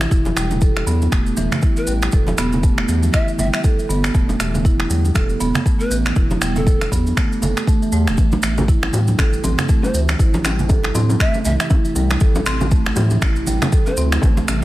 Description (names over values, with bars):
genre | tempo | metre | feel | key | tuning
afro house | 119 BPM | 4/4 | swing 58% on 16ths | A minor | A4 = 436 Hz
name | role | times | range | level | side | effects
ethereal airy pad | sustained chords | 0.0-14.6 s | C3 to G4 | -30 LUFS | right 2 dB | ensemble chorus, built-in reverb, sidechain pumping
round analog bass | bass | 0.0-14.6 s | E1 to A2 | -20 LUFS | equal | tube saturation, sidechain pumping
electronic finger snaps | drums | 0.0-14.6 s | none | -25 LUFS | right 1 dB | none
congas | percussion | 0.0-14.5 s | none | -26 LUFS | right 2 dB | none
maracas | percussion | 0.0-14.6 s | none | -31 LUFS | right 2 dB | none
marimba with medium hard mallets | arpeggios | 0.1-14.6 s | E3 to A4 | -23 LUFS | right 1 dB | sidechain pumping, tape echo
electronic kick drum | drums | 0.1-14.3 s | none | -16 LUFS | equal | none
breathy large pan pipes | melody | 1.8-14.0 s | A4 to E5 | -28 LUFS | left 1 dB | tape echo
bongos | percussion | 8.2-14.6 s | none | -28 LUFS | left 3 dB | none
room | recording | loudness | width
little or no reverb | none | -15 LUFS | side -16 dB against mid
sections
0.0-14.6 A section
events
none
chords
0.1 Em7; 8.2 Am7